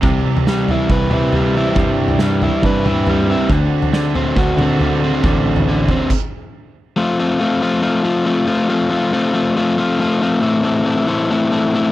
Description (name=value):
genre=indie rock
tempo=138 BPM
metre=4/4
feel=straight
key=unclear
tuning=A4 = 439 Hz
part: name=cranked stack guitar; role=riff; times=0.0-6.1 s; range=C3 to G4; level=-23 LUFS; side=right 12 dB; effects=overdrive, wide subtle chorus
part: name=overdriven electric guitar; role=riff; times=0.0-11.9 s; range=A2 to B4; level=-15 LUFS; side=left 2 dB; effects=none
part: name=fuzz fingered electric bass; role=bass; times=0.0-5.9 s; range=A1 to D3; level=-19 LUFS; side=right 1 dB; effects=overdrive
part: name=loose indie drum kit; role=drums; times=0.0-6.2 s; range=crash cymbal, kick drum, snare drum, toms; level=-20 LUFS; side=equal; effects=none
room=little or no reverb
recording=none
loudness=-14 LUFS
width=side -15 dB against mid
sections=0.0-7.0 A section; 7.0-11.9 B section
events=stop 6.1-7.0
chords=0.0 Cmaj7; 3.5 D7; 7.0 F; 10.4 Am